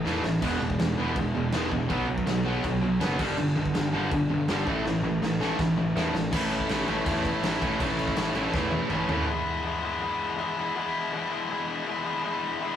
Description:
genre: punk rock.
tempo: 163 BPM.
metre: 4/4.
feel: straight.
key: E major from 9.3 s.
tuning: A4 = 438 Hz.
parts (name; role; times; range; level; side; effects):
distorted electric guitar; riff; 0.0-9.3 s; E2 to B3; -29 LUFS; right 4 dB; distortion.
thick fuzz guitar; riff; 0.0-9.3 s; E2 to B3; -36 LUFS; equal; none.
tight distorted guitar; riff; 0.0-12.8 s; G2 to E4; -28 LUFS; left 3 dB; distortion.
fuzz picked electric bass; bass; 0.0-9.2 s; E1 to E2; -33 LUFS; equal; overdrive.
raw garage drum kit; drums; 0.1-9.2 s; crash cymbal, kick drum, snare drum, splash cymbal, toms; -32 LUFS; equal; none.
room: moderate studio reverb, RT60 0.6 s.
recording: rough rehearsal-room recording, warm saturation.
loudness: -24 LUFS.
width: side -10 dB against mid.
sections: 0.0-6.3 A section; 6.3-9.3 B section; 9.3-12.8 C section.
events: drum fill 0.1-0.4, 4.9-6.3, 8.5-9.3.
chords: 0.4 E; 1.9 B5; 3.2 G5; 4.7 A5; 6.3 A; 9.3 E.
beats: 0.05 | 0.42 0.79 1.16 1.53 | 1.90 2.27 2.64 3.01 | 3.38 3.75 4.12 4.49 | 4.85 5.22 5.59 5.96 | 6.33 6.70 7.06 7.43 | 7.80 8.17 8.54 8.91 | 9.27 9.64 10.01 10.38 | 10.75 11.12 11.49 11.86 | 12.23 12.60.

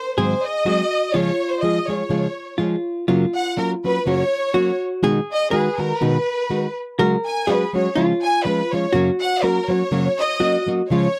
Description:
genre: mexican folk, mariachi.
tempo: 124 BPM.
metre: 2/4.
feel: swing 54% on 8ths.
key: Db major, F# major from 3.1 s.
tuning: A4 = 436 Hz.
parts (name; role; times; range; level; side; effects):
clear studio violin section; melody; 0.0-11.2 s; G#4 to G#5; -24 LUFS; equal; none.
archtop guitar, miked and amplified; second line; 0.0-10.9 s; F4 to B4; -26 LUFS; equal; none.
nylon-string guitar; accompaniment; 0.2-11.1 s; F#2 to Ab4; -22 LUFS; equal; none.
room: moderate booth ambience, RT60 0.2 s.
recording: dry, close 1970s-style studio recording.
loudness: -20 LUFS.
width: mono.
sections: 0.0-3.1 A section; 3.1-10.9 B section.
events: none.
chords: 0.0 Ab7; 1.1 Db; 3.1 F#; 5.0 B6; 7.0 C#sus4; 8.0 C#; 8.9 F#.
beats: | 0.18 0.66 | 1.14 1.63 | 2.11 2.59 | 3.09 3.58 | 4.07 4.55 | 5.03 5.52 | 6.00 6.50 | 6.99 7.48 | 7.97 8.45 | 8.93 9.42 | 9.91 10.40 | 10.90.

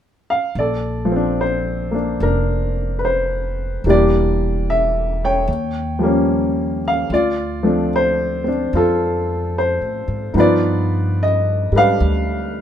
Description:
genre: jazz ballad.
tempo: 73 BPM.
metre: 4/4.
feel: swing 66% on 8ths.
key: Bb major.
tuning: A4 = 439 Hz.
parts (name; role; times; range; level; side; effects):
clear upright piano; accompaniment; 0.3-12.6 s; E3 to G5; -17 LUFS; left 1 dB; none.
upright bass; bass; 0.6-12.6 s; E1 to A2; -22 LUFS; equal; none.
room: light reverb.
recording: minimal, uncompressed stereo recording.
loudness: -16 LUFS.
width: side -9 dB against mid.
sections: 0.6-12.6 A section.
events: none.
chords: 0.0 N.C.; 0.6 Bbmaj9; 3.8 Em7b5; 5.5 Eb9; 7.1 Dm7; 10.4 G7b13.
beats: | 0.55 1.38 2.20 3.02 | 3.85 4.66 5.48 6.29 | 7.10 7.91 8.72 9.54 | 10.35 11.18 12.01.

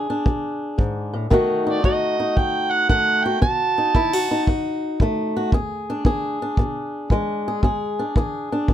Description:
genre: acoustic country blues, solo or duo.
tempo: 114 BPM.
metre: 4/4.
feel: swing 68% on 8ths.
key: unclear.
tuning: A4 = 439 Hz.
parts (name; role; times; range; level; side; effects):
fingerpicked swing-style acoustic guitar; accompaniment; 0.0-8.7 s; E2 to G#4; -22 LUFS; left 1 dB; none.
kick drum; drums; 0.3-8.7 s; none; -20 LUFS; equal; none.
overdriven harmonica; melody; 1.7-4.4 s; D5 to A5; -20 LUFS; right 4 dB; none.
room: light reverb.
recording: none.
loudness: -19 LUFS.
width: side -11 dB against mid.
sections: 0.0-8.7 A section.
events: none.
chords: 0.0 E7; 1.3 B7; 5.5 E7.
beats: 0.26 0.79 | 1.32 1.84 2.37 2.90 | 3.42 3.95 4.48 5.00 | 5.53 6.06 6.58 7.11 | 7.63 8.16 8.69.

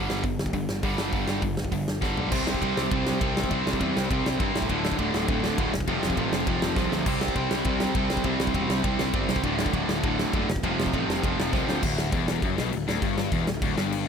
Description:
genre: punk rock.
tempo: 202 BPM.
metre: 4/4.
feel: straight.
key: unclear.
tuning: A4 = 440 Hz.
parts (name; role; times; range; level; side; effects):
distorted electric guitar; riff; 0.0-11.8 s; D2 to C4; -30 LUFS; right 14 dB; overdrive.
tight distorted guitar; riff; 0.0-14.1 s; D2 to C4; -31 LUFS; left 14 dB; distortion.
fuzz picked electric bass; bass; 0.0-14.0 s; D1 to A2; -31 LUFS; equal; overdrive.
big rock drum kit; drums; 0.1-14.0 s; crash cymbal, hi-hat, kick drum, ride cymbal, snare drum, toms; -28 LUFS; equal; none.
crunchy overdriven guitar; riff; 2.3-14.1 s; D2 to C4; -30 LUFS; equal; none.
room: little or no reverb.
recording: none.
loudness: -23 LUFS.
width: side -7 dB against mid.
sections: 0.0-2.3 A section; 2.3-11.8 B section; 11.8-14.1 C section.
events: drum fill 2.0, 6.8, 11.5.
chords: 0.0 G5; 2.3 C5; 4.7 D5; 5.7 F5; 7.1 C5; 9.4 D5; 10.5 F5; 11.8 D.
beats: 0.24 0.53 0.83 | 1.13 1.43 1.72 2.02 | 2.32 2.61 2.91 3.21 | 3.50 3.80 4.09 4.39 | 4.69 4.99 5.28 5.58 | 5.88 6.17 6.47 6.77 | 7.06 7.36 7.66 7.96 | 8.25 8.55 8.85 9.14 | 9.44 9.74 10.04 10.34 | 10.63 10.93 11.23 11.53 | 11.83 12.13 12.43 12.72 | 13.02 13.32 13.62 13.92.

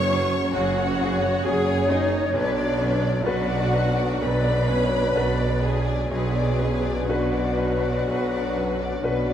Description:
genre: cinematic, emotional film score for orchestra.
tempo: 60-68 BPM.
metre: 4/4.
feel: rubato.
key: unclear.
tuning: A4 = 440 Hz.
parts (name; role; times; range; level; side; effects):
rich symphonic violin section; melody; 0.0-9.3 s; G#4 to D5; -32 LUFS; left 4 dB; none.
mellow hollow silver concert flute; second line; 0.0-9.3 s; B4 to D5; -29 LUFS; left 2 dB; none.
rich symphonic violin section; second line; 0.0-9.3 s; D5 to C#6; -34 LUFS; left 4 dB; none.
bright concert grand piano; accompaniment; 0.0-9.3 s; B1 to B4; -29 LUFS; left 2 dB; none.
rich symphonic viola section; accompaniment; 0.0-9.3 s; D4 to C#5; -29 LUFS; right 1 dB; none.
warm French horn section; sustained chords; 0.0-9.3 s; F#3 to D4; -30 LUFS; left 1 dB; none.
rich symphonic double bass section; bass; 0.0-9.3 s; F#1 to B1; -28 LUFS; right 2 dB; none.
warm symphonic cello section; bass; 0.0-9.3 s; F#2 to B2; -27 LUFS; right 2 dB; none.
room: moderate scoring stage reverb, RT60 1.8 s.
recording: none.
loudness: -20 LUFS.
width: side -10 dB against mid.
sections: 0.0-9.3 A section.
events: none.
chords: 0.0 F#sus2; 2.4 Bm.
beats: 0.56 1.47 | 2.36 3.27 4.23 5.17 | 6.12 7.10 8.08 9.04.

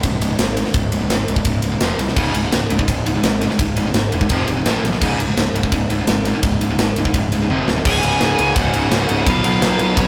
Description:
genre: heavy metal.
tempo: 169 BPM.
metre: 4/4.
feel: straight.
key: unclear.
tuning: A4 = 439 Hz.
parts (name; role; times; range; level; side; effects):
high-gain distorted guitar; riff; 0.0-10.1 s; C#2 to B3; -25 LUFS; equal; distortion.
fuzz picked electric bass; bass; 0.0-10.1 s; C#1 to C#2; -24 LUFS; equal; overdrive.
tight metal drum kit; drums; 0.0-10.1 s; crash cymbal, kick drum, ride cymbal, snare drum, toms; -22 LUFS; equal; none.
tight distorted guitar; riff; 2.2-10.1 s; C#2 to B3; -24 LUFS; equal; distortion.
high-gain lead guitar; second line; 7.8-10.1 s; C#4 to G#4; -30 LUFS; equal; none.
high-gain lead guitar; melody; 7.9-10.1 s; C#5 to G#5; -24 LUFS; equal; distortion.
room: light reverb.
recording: rough rehearsal-room recording, tube saturation.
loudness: -18 LUFS.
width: mono.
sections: 0.0-7.9 A section; 7.9-10.1 B section.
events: drum fill 7.5-7.9.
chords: 0.0 C#5; 1.8 F5; 2.2 C#5; 4.3 F5; 4.7 A5; 5.0 C#5; 7.5 F5; 7.9 C#5; 9.3 B5.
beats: 0.04 0.40 | 0.75 1.11 1.47 1.82 | 2.17 2.53 2.89 3.24 | 3.60 3.95 4.31 4.66 | 5.02 5.37 5.73 6.08 | 6.44 6.79 7.15 7.50 | 7.86 8.21 8.56 8.92 | 9.27 9.62 9.98.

